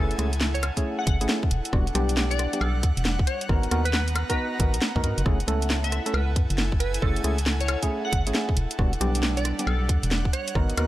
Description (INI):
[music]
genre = UK garage, two-step garage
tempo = 136 BPM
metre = 4/4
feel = swing 64% on 16ths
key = unclear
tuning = A4 = 440 Hz
[part]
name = glassy wavetable pluck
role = melody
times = 0.0-10.5 s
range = A4 to F#5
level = -32 LUFS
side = right 1 dB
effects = chorus, digital delay
[part]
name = ethereal airy pad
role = sustained chords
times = 0.0-10.9 s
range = F#5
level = -39 LUFS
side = right 2 dB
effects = ensemble chorus, built-in reverb, sidechain pumping
[part]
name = percussive organ stab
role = stabs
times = 0.0-10.9 s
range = G3 to A#5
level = -30 LUFS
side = equal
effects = chorus
[part]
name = organ-like FM bass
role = bass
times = 0.0-10.9 s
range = E1 to G#2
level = -26 LUFS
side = equal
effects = tube saturation
[part]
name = downlifter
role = sound effects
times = 0.0-1.7 s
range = none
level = barely audible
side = none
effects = none
[part]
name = airy breathy pad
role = texture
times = 0.0-10.9 s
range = G3 to A#5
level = -35 LUFS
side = equal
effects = chorus, sidechain pumping
[part]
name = garage drum kit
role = drums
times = 0.1-10.9 s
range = hi-hat, rim click, snare drum, woodblock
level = -28 LUFS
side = equal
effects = none
[part]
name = electronic kick drum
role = drums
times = 0.8-10.7 s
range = none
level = -25 LUFS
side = equal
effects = none
[sound]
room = little or no reverb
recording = none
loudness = -22 LUFS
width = side -15 dB against mid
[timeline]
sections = 0.0-10.9 A section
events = none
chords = 0.0 F#m9; 1.5 Em9; 3.3 G#m9; 5.3 F#m9; 8.6 Em9; 10.3 G#m9